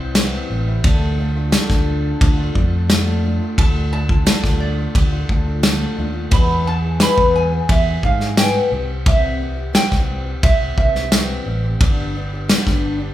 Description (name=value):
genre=indie folk with a building arrangement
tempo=88 BPM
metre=4/4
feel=straight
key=C major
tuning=A4 = 440 Hz
part: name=metal-body resonator slide guitar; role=melody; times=0.0-11.4 s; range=C5 to B5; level=-23 LUFS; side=right 3 dB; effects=none
part: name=picked twelve-string acoustic guitar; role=accompaniment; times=0.0-13.1 s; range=E2 to G#4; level=-24 LUFS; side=left 3 dB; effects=none
part: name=fingered electric bass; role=bass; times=0.0-13.1 s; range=G1 to G#2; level=-21 LUFS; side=equal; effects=none
part: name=loose indie drum kit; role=drums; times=0.2-12.8 s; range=kick drum, ride cymbal, snare drum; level=-17 LUFS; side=equal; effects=none
part: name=tambourine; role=percussion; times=0.2-12.7 s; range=none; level=-30 LUFS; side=right 7 dB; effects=none
room=moderate large studio reverb, RT60 1.1 s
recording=band playing live in one room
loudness=-15 LUFS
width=side -13 dB against mid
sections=0.0-13.1 A section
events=none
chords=0.0 C; 0.8 Dm; 6.3 E; 8.7 C; 11.8 G